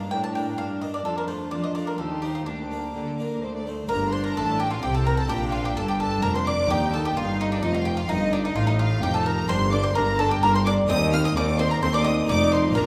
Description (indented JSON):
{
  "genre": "classical, baroque-style concerto movement with solo episodes",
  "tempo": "128 BPM",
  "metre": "3/4",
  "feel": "straight",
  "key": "G minor",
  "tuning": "A4 = 439 Hz",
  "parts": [
    { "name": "bowl-back mandolin", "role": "melody", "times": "0.0-12.9 s", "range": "D4 to A5", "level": "-29 LUFS", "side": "equal", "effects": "none" },
    { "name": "rich chamber violin section", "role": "melody", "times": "0.0-12.9 s", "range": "D5 to F6", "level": "-36 LUFS", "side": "equal", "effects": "none" },
    { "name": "clear chamber violin section", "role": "second line", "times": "0.0-12.8 s", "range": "D4 to F6", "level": "-36 LUFS", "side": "equal", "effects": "none" },
    { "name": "harpsichord", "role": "accompaniment", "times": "0.0-12.9 s", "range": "D2 to G4", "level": "-34 LUFS", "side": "equal", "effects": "none" },
    { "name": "rich chamber viola section", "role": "accompaniment", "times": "0.0-12.9 s", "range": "A3 to F4", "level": "-34 LUFS", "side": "equal", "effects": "none" },
    { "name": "rich symphonic cello section", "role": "bass", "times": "0.0-12.9 s", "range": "D2 to F3", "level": "-31 LUFS", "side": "equal", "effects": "none" },
    { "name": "clear chamber double bass section", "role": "bass", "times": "3.9-12.9 s", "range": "F1 to Eb2", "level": "-30 LUFS", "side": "equal", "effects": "none" }
  ],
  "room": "wet recital hall reverb, RT60 1.5 s",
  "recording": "recorded in a church or concert hall",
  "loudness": "-24 LUFS",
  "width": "mono",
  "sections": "0.0-3.9 A section; 3.9-12.9 B section",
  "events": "none",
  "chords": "0.0 Gm; 1.1 Dm/F; 2.0 Cm/Eb; 2.5 Gm/D; 3.4 D5; 3.9 Gm; 6.7 Eb; 8.1 Eb/G; 9.5 Gm; 10.9 Cm/Eb; 12.3 F7",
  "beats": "0.12 0.58 | 1.05 1.52 1.99 | 2.46 2.94 3.42 | 3.89 4.36 4.83 | 5.30 5.77 6.23 | 6.70 7.16 7.63 | 8.10 8.56 9.03 | 9.49 9.96 10.42 | 10.89 11.36 11.82 | 12.29 12.76"
}